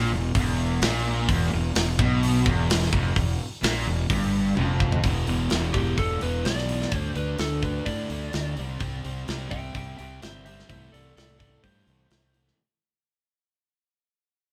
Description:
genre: hard rock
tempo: 128 BPM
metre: 4/4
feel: straight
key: E minor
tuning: A4 = 440 Hz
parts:
  - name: crunchy overdriven guitar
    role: riff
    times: 0.0-12.6 s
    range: E2 to D4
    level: -35 LUFS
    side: equal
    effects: none
  - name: sludgy distorted guitar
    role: riff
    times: 0.0-12.6 s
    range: E2 to D4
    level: -34 LUFS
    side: equal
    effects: overdrive
  - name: sludgy distorted guitar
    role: riff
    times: 0.0-5.0 s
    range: E2 to B2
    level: -33 LUFS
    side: equal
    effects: overdrive
  - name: fuzz fingered electric bass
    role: bass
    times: 0.0-12.5 s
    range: E1 to A2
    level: -30 LUFS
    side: equal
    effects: overdrive
  - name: tight metal drum kit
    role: drums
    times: 0.3-12.5 s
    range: hi-hat, kick drum, snare drum, toms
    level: -30 LUFS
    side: equal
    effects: none
  - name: lightly driven lead guitar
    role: melody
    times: 5.7-12.5 s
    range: G4 to G5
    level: -36 LUFS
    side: equal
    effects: none
room: light reverb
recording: band playing live in one room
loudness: -25 LUFS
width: mono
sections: 0.0-5.0 A section; 5.0-12.6 B section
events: drum fill 4.6-5.0; fade-out 5.0-12.6; lead electric guitar solo 5.0-12.6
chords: 0.0 Em; 5.0 E5; 6.9 D5; 8.6 C; 10.7 Am/C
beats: 0.35 0.82 | 1.29 1.75 2.22 2.69 | 3.16 3.63 4.10 4.57 | 5.04 5.51 5.98 6.45 | 6.92 7.39 7.87 8.34 | 8.81 9.28 9.75 10.22 | 10.69 11.16 11.63 12.10

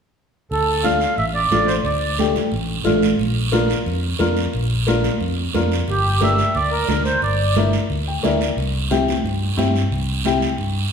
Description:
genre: latin, cumbia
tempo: 179 BPM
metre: 4/4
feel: straight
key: D minor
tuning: A4 = 442 Hz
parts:
  - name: mellow accordion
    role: melody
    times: 0.5-2.2, 5.9-7.5 s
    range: G4 to F5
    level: -20 LUFS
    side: right 2 dB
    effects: none
  - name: fingered electric bass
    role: bass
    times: 0.5-10.9 s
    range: G1 to G2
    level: -22 LUFS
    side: equal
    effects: none
  - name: guiro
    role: percussion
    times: 0.5-10.9 s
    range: none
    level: -28 LUFS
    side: right 6 dB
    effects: none
  - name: clear upright piano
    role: accompaniment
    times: 0.8-10.5 s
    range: A3 to G5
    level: -22 LUFS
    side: left 4 dB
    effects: none
  - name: congas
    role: percussion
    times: 0.9-10.4 s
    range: none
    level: -25 LUFS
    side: right 4 dB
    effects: none
room: wet recital hall reverb, RT60 1.3 s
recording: recorded in a church or concert hall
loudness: -17 LUFS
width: side -6 dB against mid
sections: 0.5-10.9 A section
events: upright piano fill 7.9-8.6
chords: 0.5 Dm; 3.2 Bb; 5.9 Gm; 8.6 C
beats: | 0.51 0.85 1.18 1.52 | 1.85 2.19 2.53 2.86 | 3.20 3.53 3.87 4.21 | 4.54 4.88 5.21 5.55 | 5.88 6.22 6.56 6.89 | 7.23 7.56 7.90 8.24 | 8.57 8.91 9.24 9.58 | 9.92 10.25 10.59

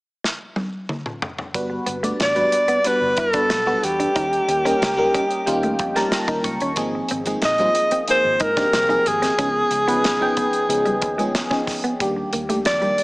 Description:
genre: polished 1980s jazz-funk pop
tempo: 92 BPM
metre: 4/4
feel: straight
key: unclear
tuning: A4 = 440 Hz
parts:
  - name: modern studio drum kit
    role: drums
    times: 0.2-13.0 s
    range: hi-hat, kick drum, snare drum, toms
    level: -26 LUFS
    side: equal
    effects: none
  - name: FM electric piano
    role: accompaniment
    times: 1.5-13.0 s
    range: Eb3 to Db6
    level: -24 LUFS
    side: equal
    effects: phaser, wide subtle chorus
  - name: vintage muted fingered electric bass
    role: bass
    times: 1.5-12.9 s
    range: G1 to Ab2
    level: -34 LUFS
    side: equal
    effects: none
  - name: clean electric guitar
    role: riff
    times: 1.7-13.0 s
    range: G3 to F#4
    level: -28 LUFS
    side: right 1 dB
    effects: wide subtle chorus
  - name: breathy alto saxophone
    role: melody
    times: 2.2-13.0 s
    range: G4 to Eb5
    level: -19 LUFS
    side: equal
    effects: none
room: light reverb, small room ambience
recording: small speaker sound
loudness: -18 LUFS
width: side -23 dB against mid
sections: 0.0-1.5 A section; 1.5-13.0 B section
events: drum fill 0.2-1.5; FM electric piano fill 4.8-6.8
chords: 0.0 N.C.; 1.5 Gmaj7; 4.2 Eb7; 6.8 Ab69; 9.4 C#9; 12.0 Ebmaj7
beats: 0.24 0.89 | 1.54 2.20 2.85 3.51 | 4.16 4.81 5.47 6.12 | 6.77 7.43 8.08 8.73 | 9.38 10.04 10.69 11.34 | 12.00 12.65

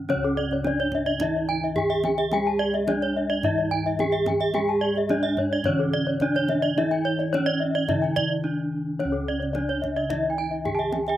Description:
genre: Balinese gamelan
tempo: 108 BPM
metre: 4/4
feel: straight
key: C# pelog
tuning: A4 = 440 Hz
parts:
  - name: gamelan-type bronze metallophone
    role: melody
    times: 0.0-11.2 s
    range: C#4 to G#4-45c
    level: -26 LUFS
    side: right 2 dB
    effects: none
  - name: gamelan-type bronze metallophone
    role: accompaniment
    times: 0.0-11.2 s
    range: C#3 to G#3-45c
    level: -32 LUFS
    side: left 2 dB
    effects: slapback echo
  - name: gamelan-type bossed gongs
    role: bass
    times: 0.0-11.2 s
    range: C#2 to G#4-45c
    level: -33 LUFS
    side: equal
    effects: none
  - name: gamelan-type bronze metallophone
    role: arpeggios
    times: 0.1-11.1 s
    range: A4-40c to A5-40c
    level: -28 LUFS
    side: left 6 dB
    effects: slapback echo
  - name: kendang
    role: percussion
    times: 0.1-11.1 s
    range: none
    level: -34 LUFS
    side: right 1 dB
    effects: none
  - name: gamelan-type bronze metallophone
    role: arpeggios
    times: 0.4-11.2 s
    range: C#5 to G#5-45c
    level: -28 LUFS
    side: right 4 dB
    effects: slapback echo
  - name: worn celesta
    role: second line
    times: 10.0-11.2 s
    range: E5-50c to A5-40c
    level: -30 LUFS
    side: right 3 dB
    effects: none
room: little or no reverb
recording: recorded outdoors, with no room sound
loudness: -22 LUFS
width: side -12 dB against mid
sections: 0.1-11.2 A section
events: break 8.2-9.0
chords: none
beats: | 0.10 0.66 1.21 1.77 | 2.32 2.88 3.43 3.99 | 4.54 5.10 5.66 6.21 | 6.77 7.32 7.88 8.43 | 8.99 9.54 10.10 10.65

